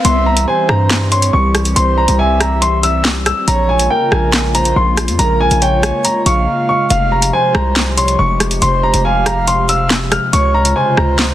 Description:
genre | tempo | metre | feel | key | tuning
hip hop, drill | 140 BPM | 4/4 | half-time | unclear | A4 = 439 Hz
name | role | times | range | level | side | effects
warm upright piano | melody | 0.0-11.3 s | F5 to F6 | -16 LUFS | left 2 dB | none
breathy flute-like synth lead | second line | 0.0-11.3 s | Bb4 to F5 | -20 LUFS | right 5 dB | chorus, tape echo
hollow soft pad | sustained chords | 0.2-11.3 s | C3 to G4 | -21 LUFS | left 1 dB | wide subtle chorus
hard-hitting 808-style bass | bass | 0.0-11.3 s | F1 to G2 | -16 LUFS | equal | none
drill drum kit | drums | 0.0-11.3 s | handclaps, hi-hat, rim click, snare drum | -16 LUFS | equal | vintage 12-bit sampler grit
room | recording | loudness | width
little or no reverb | dense, heavily limited modern master | -11 LUFS | side -12 dB against mid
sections
0.0-11.3 A section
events
drums muted 6.5-6.9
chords
0.0 C; 3.5 Bbm7; 6.9 Fmadd9; 10.3 Dbmaj7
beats
| 0.05 0.47 0.90 1.33 | 1.76 2.19 2.62 3.05 | 3.48 3.90 4.33 4.76 | 5.19 5.62 6.05 6.47 | 6.90 7.33 7.76 8.19 | 8.62 9.05 9.47 9.90 | 10.33 10.76 11.19

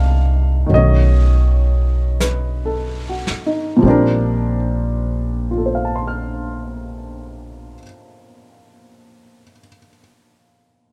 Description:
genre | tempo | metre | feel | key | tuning
jazz ballad | 35-43 BPM | 4/4 | swing 68% on 8ths | Bb major | A4 = 441 Hz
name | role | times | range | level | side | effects
warm baby grand piano | accompaniment | 0.0-10.9 s | Bb2 to F6 | -22 LUFS | equal | none
upright bass | bass | 0.0-7.7 s | Bb1 to C2 | -20 LUFS | equal | none
vintage brush drum kit | drums | 0.7-4.6 s | brushed snare drum, hi-hat, snare drum | -30 LUFS | equal | none
room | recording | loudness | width
little or no reverb | none | -17 LUFS | mono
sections
0.0-3.8 A section; 3.8-10.6 B section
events
slowing down 0.0-3.8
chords
0.0 F13; 0.7 B7; 3.8 Bbmaj13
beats
0.71 2.20 | 3.83 5.52 7.20 8.89

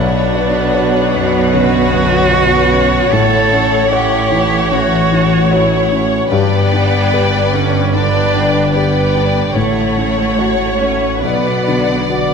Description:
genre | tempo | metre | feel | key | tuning
cinematic, emotional film score for orchestra | 75 BPM | 4/4 | rubato | B minor | A4 = 442 Hz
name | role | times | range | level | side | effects
rich cello | melody | 0.0-12.3 s | A3 to A4 | -18 LUFS | right 3 dB | none
rich studio violin section | melody | 0.0-12.3 s | F#5 to G5 | -25 LUFS | left 2 dB | none
rich studio violin section | second line | 0.0-12.3 s | C#5 to D5 | -19 LUFS | left 2 dB | none
rich studio viola section | accompaniment | 0.0-12.3 s | B4 to D5 | -21 LUFS | right 1 dB | none
warm concert grand piano | accompaniment | 0.0-12.3 s | B1 to F#5 | -18 LUFS | left 2 dB | none
concert harp | arpeggios | 0.0-12.3 s | G2 to F#5 | -20 LUFS | left 8 dB | none
clear studio double bass section | bass | 0.0-12.3 s | G1 to B1 | -21 LUFS | right 5 dB | none
rich studio cello section | bass | 0.0-12.3 s | G2 to B2 | -20 LUFS | right 3 dB | none
room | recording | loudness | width
wet scoring stage reverb, RT60 1.5 s | none | -11 LUFS | side -6 dB against mid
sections
0.0-12.3 A section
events
none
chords
0.0 Bmadd9; 3.1 A6; 6.3 G; 9.6 F#m/A; 11.2 Bm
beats
0.74 1.53 2.33 | 3.12 3.92 4.72 5.52 | 6.32 7.13 7.94 8.74 | 9.55 10.38 11.23 12.09

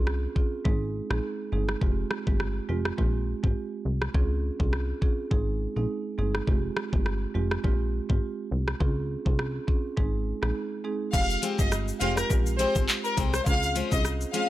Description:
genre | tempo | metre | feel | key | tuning
dancehall | 103 BPM | 4/4 | swing 56% on 16ths | F minor | A4 = 445 Hz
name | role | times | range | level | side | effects
marimba with medium mallets | accompaniment | 0.0-14.5 s | Ab3 to Ab4 | -32 LUFS | right 5 dB | none
plucky analog bass | bass | 0.0-14.3 s | F1 to Db2 | -29 LUFS | equal | none
afro-pop drum kit | drums | 0.1-14.5 s | crash cymbal, handclaps, hi-hat, kick drum, rim click, shaker | -27 LUFS | equal | none
warm symphonic violin section | melody | 11.1-14.4 s | Bb4 to F5 | -28 LUFS | left 1 dB | tape echo
tube shaker | percussion | 11.1-14.3 s | none | -41 LUFS | left 8 dB | none
picked steel-string acoustic guitar | arpeggios | 11.4-14.5 s | Ab3 to C5 | -32 LUFS | left 7 dB | none
room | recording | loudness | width
small room ambience | none | -25 LUFS | side -15 dB against mid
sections
0.0-11.1 A section; 11.1-14.5 B section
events
break 10.6-11.1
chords
0.0 Dbmaj7; 0.7 Ab; 1.8 Fmadd9; 4.1 Dbmaj7; 5.3 Ab; 6.5 Fmadd9; 8.8 Dbmaj7; 10.0 Ab; 11.1 Fmadd9; 13.5 Dbmaj7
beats
0.07 0.65 1.23 | 1.81 2.40 2.98 3.56 | 4.14 4.73 5.31 5.89 | 6.47 7.06 7.64 8.22 | 8.80 9.39 9.97 10.55 | 11.13 11.72 12.30 12.88 | 13.46 14.05

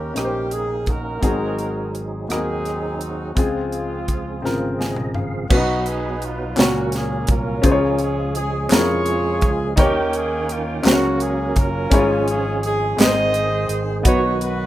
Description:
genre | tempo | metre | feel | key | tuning
slow gospel | 56 BPM (dotted quarters) | 6/8 | straight | Db major | A4 = 440 Hz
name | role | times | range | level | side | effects
warm horn section | melody | 0.0-14.7 s | Ab3 to Eb5 | -25 LUFS | right 2 dB | none
clear baby grand piano | accompaniment | 0.0-14.7 s | Ab2 to Ab5 | -22 LUFS | left 2 dB | none
percussive tonewheel organ | sustained chords | 0.0-14.7 s | Db3 to G5 | -27 LUFS | right 4 dB | slow rotary speaker, overdrive, chorus vibrato
fingered electric bass | bass | 0.0-14.7 s | Gb1 to F2 | -27 LUFS | equal | none
crisp fusion drum kit | drums | 0.2-14.6 s | crash cymbal, hi-hat, kick drum, rim click, snare drum, toms | -19 LUFS | equal | none
group handclap | percussion | 6.6-13.3 s | none | -30 LUFS | left 1 dB | none
room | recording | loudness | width
moderate small room reverb, RT60 0.6 s | rough home demo mix | -18 LUFS | side -14 dB against mid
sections
0.0-5.5 A section; 5.5-14.7 B section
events
drum fill 4.4-5.5; grand piano fill 4.4-5.5; tonewheel organ fill 4.4-5.5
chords
0.0 Eb7; 1.2 Ab7; 3.4 Dbmaj7; 5.5 Cb; 6.6 Gb/Db; 7.6 Db; 9.8 Eb7; 10.8 Gb/Db; 11.9 Db/Ab; 13.0 Ab; 14.1 Cb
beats
0.15 | 1.23 2.29 | 3.37 4.43 | 5.50 6.57 | 7.64 8.71 | 9.78 10.85 | 11.91 12.98 | 14.05

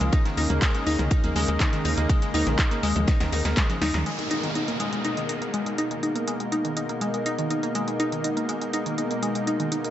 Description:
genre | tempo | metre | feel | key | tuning
progressive house | 122 BPM | 4/4 | straight | G# minor | A4 = 439 Hz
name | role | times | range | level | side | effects
lush unison pad | sustained chords | 0.0-9.9 s | B2 to D#4 | -29 LUFS | left 1 dB | chorus, sidechain pumping
glassy wavetable pluck | arpeggios | 0.0-9.9 s | D#3 to D#4 | -27 LUFS | left 1 dB | chorus, sidechain pumping, digital delay
tight sequencer bass | bass | 0.0-4.0 s | A#1 to D#2 | -26 LUFS | equal | tube saturation, sidechain pumping
deep house drum kit | drums | 0.0-9.9 s | handclaps, hi-hat, snare drum | -31 LUFS | equal | none
deep reggae drum kit | drums | 0.0-4.1 s | ride cymbal, snare drum | -40 LUFS | left 3 dB | none
electronic congas and toms | percussion | 0.0-4.0 s | none | -33 LUFS | equal | sidechain pumping on perc, sidechain pumping on toms
electronic kick drum | drums | 0.1-3.7 s | none | -22 LUFS | equal | none
downlifter | sound effects | 4.1-8.0 s | none | -34 LUFS | equal | none
room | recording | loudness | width
light reverb | nothing above 8.0 kHz | -22 LUFS | side -12 dB against mid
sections
0.0-4.1 A section; 4.1-9.9 B section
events
drum fill 3.1-4.1; band accent 3.9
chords
0.1 D#7sus4; 4.1 G#madd9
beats
| 0.13 0.62 1.11 1.60 | 2.10 2.59 3.08 3.57 | 4.06 4.55 5.05 5.54 | 6.03 6.52 7.01 7.50 | 8.00 8.49 8.98 9.47

